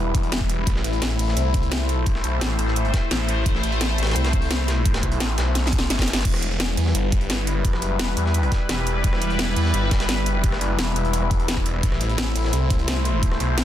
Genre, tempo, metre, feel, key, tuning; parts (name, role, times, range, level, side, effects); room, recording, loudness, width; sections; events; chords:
dark technical drum and bass; 172 BPM; 4/4; straight; A4 = 441 Hz
sweeping resonant pad; sustained chords; 0.0-13.6 s; G3 to C5; -27 LUFS; left 2 dB; chorus, sidechain pumping
snarling distorted saw bass; bass; 0.0-13.6 s; E1 to E2; -23 LUFS; equal; distortion, tube saturation, sidechain pumping
breakbeat sampler-style drum kit; drums; 0.1-13.6 s; hi-hat, snare drum; -34 LUFS; right 1 dB; high-pass filter on hats, high-pass filter on snare
drum and bass drum kit; drums; 0.1-13.6 s; crash cymbal, hi-hat, rim click, snare drum; -26 LUFS; equal; overdrive
electronic kick drum; drums; 0.1-13.3 s; -22 LUFS; equal
light reverb, digital ambience; dense, heavily limited modern master; -19 LUFS; side -11 dB against mid
0.0-13.6 A section
drum fill 5.6-6.3
0.0 Em; 0.7 Am; 6.3 Em; 11.8 Am